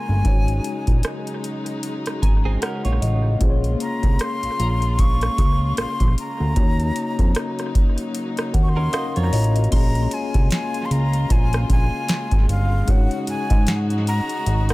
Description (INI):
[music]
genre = contemporary R&B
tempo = 76 BPM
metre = 4/4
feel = swing 58% on 16ths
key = Bb minor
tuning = A4 = 441 Hz
[part]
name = breathy jazz flute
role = melody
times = 0.0-14.7 s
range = F5 to Db6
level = -28 LUFS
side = left 1 dB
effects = analog delay
[part]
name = mellow tine electric piano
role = accompaniment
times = 0.0-14.7 s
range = Ab3 to Bb5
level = -28 LUFS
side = left 4 dB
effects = medium stereo tremolo, analog delay
[part]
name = warm chamber string section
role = sustained chords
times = 0.0-14.7 s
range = Db3 to Gb4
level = -31 LUFS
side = equal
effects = sidechain pumping
[part]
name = glassy wavetable pluck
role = texture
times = 0.0-12.3 s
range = Ab5 to C6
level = -40 LUFS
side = left 1 dB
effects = chorus, analog delay
[part]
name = fat analog bass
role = bass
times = 0.1-14.7 s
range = G1 to Ab2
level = -20 LUFS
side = equal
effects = none
[part]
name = booming analog drum machine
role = drums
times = 0.2-14.7 s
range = crash cymbal, hi-hat, kick drum, rim click, snare drum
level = -20 LUFS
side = equal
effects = none
[part]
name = direct-recorded clean electric guitar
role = arpeggios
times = 2.5-3.4, 8.8-9.7 s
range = C4 to Eb5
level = -32 LUFS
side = right 6 dB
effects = analog delay
[sound]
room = digital ambience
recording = echo-heavy mix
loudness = -18 LUFS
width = side -20 dB against mid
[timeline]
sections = 0.0-9.7 A section; 9.7-14.7 B section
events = tine electric piano fill 1.8-3.4, 8.1-9.7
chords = 0.2 Ab7sus4; 3.4 Bbm7; 6.6 Ebm7; 9.7 Bbm7; 12.9 Ab7sus4